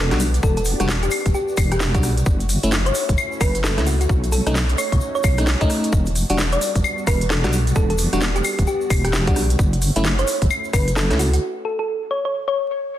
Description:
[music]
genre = UK garage, two-step garage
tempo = 131 BPM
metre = 4/4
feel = swing 62% on 16ths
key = E dorian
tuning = A4 = 440 Hz
[part]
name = thumb-piano-like synth pluck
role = melody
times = 0.0-12.9 s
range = F#4 to D5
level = -24 LUFS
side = equal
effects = chorus, dub echo
[part]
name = soft string machine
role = sustained chords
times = 0.2-11.4 s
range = G3 to G4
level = -33 LUFS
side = equal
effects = phaser, ensemble chorus, sidechain pumping
[part]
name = deep soft wobble bass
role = bass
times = 0.0-11.4 s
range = E1 to C#2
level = -20 LUFS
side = equal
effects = chorus, tube saturation, sidechain pumping
[part]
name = FM electric piano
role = stabs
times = 0.1-11.3 s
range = G3 to F#4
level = -25 LUFS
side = equal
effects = chorus, dub echo
[part]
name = garage drum kit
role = drums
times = 0.1-11.4 s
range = claves, hi-hat, rim click, snare drum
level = -24 LUFS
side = equal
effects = none
[part]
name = egg shaker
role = percussion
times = 0.1-11.4 s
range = none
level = -33 LUFS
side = left 3 dB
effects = none
[part]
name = electronic kick drum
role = drums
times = 0.4-10.8 s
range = none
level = -21 LUFS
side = equal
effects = none
[sound]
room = light reverb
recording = dense, heavily limited modern master, vinyl crackle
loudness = -17 LUFS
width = side -12 dB against mid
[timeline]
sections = 0.0-13.0 A section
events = break 11.4-13.0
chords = 0.0 Em9; 2.3 F#m7; 4.1 B9; 5.9 Em9; 9.6 F#m7; 11.4 N.C.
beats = | 0.43 0.89 1.35 1.80 | 2.26 2.72 3.18 3.64 | 4.09 4.55 5.01 5.47 | 5.93 6.38 6.84 7.30 | 7.76 8.22 8.67 9.13 | 9.59 10.05 10.51 10.96 | 11.42 11.88 12.34 12.80

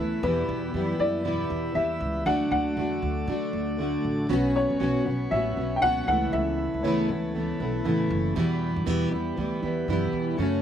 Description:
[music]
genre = acoustic pop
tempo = 118 BPM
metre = 4/4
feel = swing 60% on 16ths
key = unclear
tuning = A4 = 441 Hz
[part]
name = dark upright piano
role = melody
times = 0.0-8.1 s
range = B4 to G5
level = -28 LUFS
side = left 1 dB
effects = slapback echo
[part]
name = fingerpicked plugged-in steel-string acoustic guitar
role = accompaniment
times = 0.0-10.6 s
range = E2 to F#4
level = -26 LUFS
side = equal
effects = double-tracked left and right
[part]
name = chamber organ, principal chorus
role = sustained chords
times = 0.0-10.6 s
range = E3 to E5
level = -37 LUFS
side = equal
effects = none
[part]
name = upright bass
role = bass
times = 0.0-10.6 s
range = F#1 to D3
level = -32 LUFS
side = right 1 dB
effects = none
[sound]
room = little or no reverb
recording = recorded outdoors, with no room sound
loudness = -24 LUFS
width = side -9 dB against mid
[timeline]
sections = 0.0-4.3 A section; 4.3-10.6 B section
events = none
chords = 0.2 Em; 2.3 D; 4.3 Bsus2; 6.1 Aadd9/C#; 8.4 Em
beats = | 0.23 0.74 1.25 1.76 | 2.27 2.77 3.28 3.79 | 4.30 4.81 5.31 5.82 | 6.33 6.83 7.34 7.85 | 8.36 8.86 9.37 9.88 | 10.38

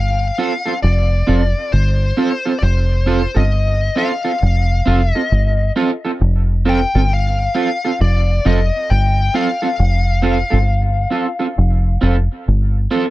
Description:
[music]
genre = roots reggae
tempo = 67 BPM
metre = 4/4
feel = swing 63% on 16ths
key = unclear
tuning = A4 = 441 Hz
[part]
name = bluesy overdriven lead guitar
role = melody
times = 0.0-12.4 s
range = C5 to G5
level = -21 LUFS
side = left 3 dB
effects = distortion, dub echo
[part]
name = deep dub fingered electric bass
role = bass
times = 0.0-12.9 s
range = F1 to G1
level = -14 LUFS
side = equal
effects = none
[part]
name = electric guitar at the edge of break-up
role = accompaniment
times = 0.4-13.1 s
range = C4 to A4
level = -19 LUFS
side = right 4 dB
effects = lush chorus, dub echo
[sound]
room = little or no reverb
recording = dry, close 1970s-style studio recording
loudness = -14 LUFS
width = side -17 dB against mid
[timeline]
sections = 0.0-13.1 A section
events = none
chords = 0.0 F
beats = 0.83 1.72 | 2.62 3.51 4.41 5.30 | 6.20 7.09 7.99 8.88 | 9.78 10.68 11.57 12.46

